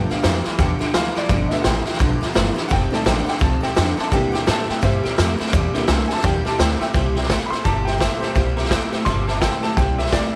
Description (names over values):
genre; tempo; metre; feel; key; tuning
rockabilly; 170 BPM; 4/4; swing 61% on 8ths; C mixolydian; A4 = 441 Hz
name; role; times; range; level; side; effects
picked steel-string acoustic guitar; accompaniment; 0.0-10.3 s; G2 to A4; -32 LUFS; equal; none
tack piano; accompaniment; 0.0-10.4 s; D3 to Bb5; -29 LUFS; equal; none
electric guitar through a small old amp; riff; 0.0-10.3 s; F2 to A3; -28 LUFS; equal; analog chorus
upright bass; bass; 0.0-10.2 s; F1 to C3; -25 LUFS; equal; none
raw garage drum kit; drums; 0.1-10.2 s; hi-hat, kick drum, snare drum; -23 LUFS; equal; none
warm upright piano; melody; 7.5-10.4 s; G4 to C6; -28 LUFS; equal; none
room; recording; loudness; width
light reverb, small room ambience; none; -20 LUFS; mono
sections
0.0-6.9 A section; 6.9-10.4 B section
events
honky-tonk piano solo 0.0-6.9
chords
0.0 G7; 2.7 F7; 4.1 C7